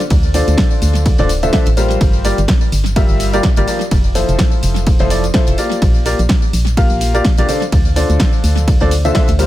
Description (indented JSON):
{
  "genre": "piano house",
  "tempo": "126 BPM",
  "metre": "4/4",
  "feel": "swing 57% on 16ths",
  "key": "D minor",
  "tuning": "A4 = 440 Hz",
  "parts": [
    { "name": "punchy analog drum machine", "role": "drums", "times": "0.0-9.5 s", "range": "hi-hat, ride cymbal, snare drum, tambourine", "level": "-21 LUFS", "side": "equal", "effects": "tape echo" },
    { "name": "organ-like FM bass", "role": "bass", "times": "0.1-9.5 s", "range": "D1 to D2", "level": "-16 LUFS", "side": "equal", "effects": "sidechain pumping" },
    { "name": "electronic kick drum", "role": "drums", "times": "0.1-9.3 s", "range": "none", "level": "-14 LUFS", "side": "equal", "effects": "none" },
    { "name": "clear upright piano", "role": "riff", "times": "0.3-9.5 s", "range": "D3 to F5", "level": "-18 LUFS", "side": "left 1 dB", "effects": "sidechain pumping, tape echo" }
  ],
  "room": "digital ambience",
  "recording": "echo-heavy mix",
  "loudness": "-11 LUFS",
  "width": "side -14 dB against mid",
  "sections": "0.0-9.5 A section",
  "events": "none",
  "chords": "0.0 Dm7; 2.0 Gm7; 3.9 Fmaj7; 5.6 Bb6; 7.5 Dm7"
}